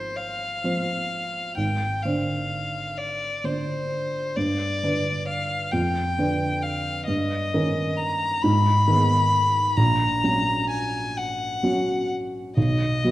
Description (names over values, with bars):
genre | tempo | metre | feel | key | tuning
classical, romantic duo for violin and grand piano | 43 BPM (dotted quarters) | 6/8 | rubato | unclear | A4 = 440 Hz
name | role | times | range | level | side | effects
rich violin | melody | 0.0-13.1 s | C5 to B5 | -25 LUFS | left 2 dB | none
dark baby grand piano | accompaniment | 0.0-13.1 s | Ab1 to C5 | -24 LUFS | right 1 dB | none
room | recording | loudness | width
wet recital hall reverb, RT60 1.4 s | dark, warm production | -22 LUFS | side -15 dB against mid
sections
0.0-13.1 A section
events
none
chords
0.0 Fm/Ab; 1.6 Dm7b5/Ab; 4.4 G; 5.7 G7/F; 7.1 D#7/G; 8.4 G#m; 9.8 F#/A#; 12.6 B